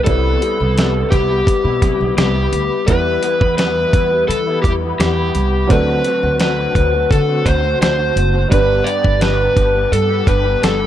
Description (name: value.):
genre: indie pop, bedroom pop.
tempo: 85 BPM.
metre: 4/4.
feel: straight.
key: E minor.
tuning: A4 = 440 Hz.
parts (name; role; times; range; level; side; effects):
overdriven slide guitar; melody; 0.0-10.9 s; G4 to D5; -17 LUFS; left 1 dB; lush chorus, ping-pong delay.
clear upright piano; accompaniment; 0.0-10.9 s; F#3 to B4; -25 LUFS; right 4 dB; none.
electric guitar through a small old amp; accompaniment; 0.0-10.9 s; G2 to G4; -22 LUFS; left 6 dB; ensemble chorus, warbly pitch drift.
upright bass; bass; 0.1-10.9 s; F#1 to E3; -19 LUFS; right 1 dB; none.
dusty soul sampler-style drum kit; drums; 0.1-10.8 s; hi-hat, kick drum, snare drum; -16 LUFS; right 1 dB; none.
room: light reverb.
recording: none.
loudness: -13 LUFS.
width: side -11 dB against mid.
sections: 0.0-10.9 A section.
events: none.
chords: 0.1 Cmaj7; 2.9 Em; 5.7 D7; 8.5 G.